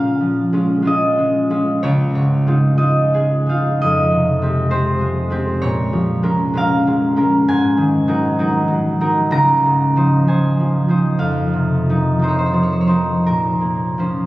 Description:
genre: classical, solo harp piece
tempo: 55-69 BPM (dotted quarters)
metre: 6/8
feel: rubato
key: Bb minor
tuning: A4 = 443 Hz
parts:
  - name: concert harp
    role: solo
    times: 0.0-14.3 s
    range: Db2 to Bb5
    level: -14 LUFS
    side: equal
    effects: none
room: wet church reverb, RT60 3.7 s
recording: recorded on a phone in the room, club ambience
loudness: -14 LUFS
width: side -17 dB against mid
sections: 0.0-14.3 A section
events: none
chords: 0.0 Bbm7; 1.8 Dbadd9; 3.8 Fm9; 5.6 Bbm7; 7.4 Ab9sus4; 9.3 Dbmaj9; 11.2 F7sus4; 13.3 Bbmadd9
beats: 0.87 | 1.84 2.80 | 3.83 4.72 | 5.62 6.53 | 7.45 8.37 | 9.31 10.26 | 11.21 12.20 | 13.25

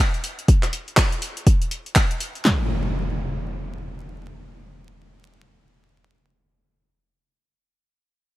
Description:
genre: deep house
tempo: 122 BPM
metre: 4/4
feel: swing 61% on 16ths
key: none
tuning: none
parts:
  - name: deep house drum kit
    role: drums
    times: 0.1-2.4 s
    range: handclaps, hi-hat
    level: -23 LUFS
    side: equal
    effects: overdrive
  - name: deep house drum kit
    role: drums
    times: 0.5-2.6 s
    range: handclaps, kick drum, snare drum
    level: -17 LUFS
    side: equal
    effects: overdrive
  - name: impact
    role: sound effects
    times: 2.5-6.9 s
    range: none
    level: -26 LUFS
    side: equal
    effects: none
room: little or no reverb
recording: vinyl crackle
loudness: -19 LUFS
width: side -17 dB against mid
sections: 0.0-2.5 A section; 2.5-6.4 B section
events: none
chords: none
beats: | 0.48 0.97 1.47 1.96 | 2.45 2.94 3.43 3.93 | 4.42 4.91 5.40 5.89

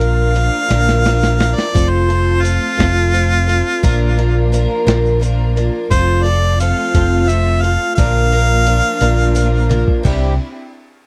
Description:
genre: folk rock and heartland rock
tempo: 58 BPM (dotted quarters)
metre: 6/8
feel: straight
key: unclear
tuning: A4 = 440 Hz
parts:
  - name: clear harmonica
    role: melody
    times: 0.0-10.0 s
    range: F4 to F5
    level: -20 LUFS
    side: equal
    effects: none
  - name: picked twelve-string acoustic guitar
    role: accompaniment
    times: 0.0-10.3 s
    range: Bb2 to Bb4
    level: -22 LUFS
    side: equal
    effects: subtle chorus
  - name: rich chamber string section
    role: sustained chords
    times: 0.0-10.5 s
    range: A3 to Bb4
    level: -29 LUFS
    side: equal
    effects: none
  - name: hollow-body short-scale fingered electric bass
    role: bass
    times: 0.0-10.4 s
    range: F1 to C2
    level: -17 LUFS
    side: equal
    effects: none
  - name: boom bap sampler-style drum kit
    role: drums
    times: 0.0-10.2 s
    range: crash cymbal, hi-hat, kick drum, snare drum, toms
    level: -20 LUFS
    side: equal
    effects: none
  - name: tube shaker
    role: percussion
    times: 1.8-10.4 s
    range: none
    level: -36 LUFS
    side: equal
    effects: none
room: little or no reverb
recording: dry, close 1970s-style studio recording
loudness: -15 LUFS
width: mono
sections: 0.0-10.1 A section; 10.1-11.1 B section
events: harmonica solo 0.0-10.1; drum fill 0.7-1.8, 9.7-10.1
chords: 0.0 Bb; 1.8 F; 3.8 Bb; 5.9 F; 8.0 Bb; 10.1 Cadd9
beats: 0.71 | 1.75 2.79 | 3.83 4.87 | 5.91 6.95 | 7.98 9.02 | 10.05

